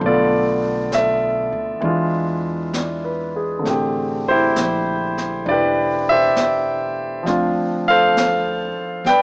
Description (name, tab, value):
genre	jazz ballad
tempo	66 BPM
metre	4/4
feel	swing 67% on 8ths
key	unclear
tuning	A4 = 441 Hz
part	warm grand piano	accompaniment	0.0-9.2 s	D3 to G5	-17 LUFS	equal	none
part	upright bass	bass	0.0-9.2 s	E1 to E2	-30 LUFS	equal	none
part	jazz brush drum kit	drums	0.0-9.2 s	brushed snare drum, hi-hat, snare drum	-28 LUFS	equal	none
room	light reverb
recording	worn, warbling old tape, cassette tape, warbly pitch drift, small speaker sound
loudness	-16 LUFS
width	side -31 dB against mid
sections	0.0-9.2 A section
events	none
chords	0.0 Bm7b5; 1.8 E7b9; 3.6 Am11; 7.3 Dm7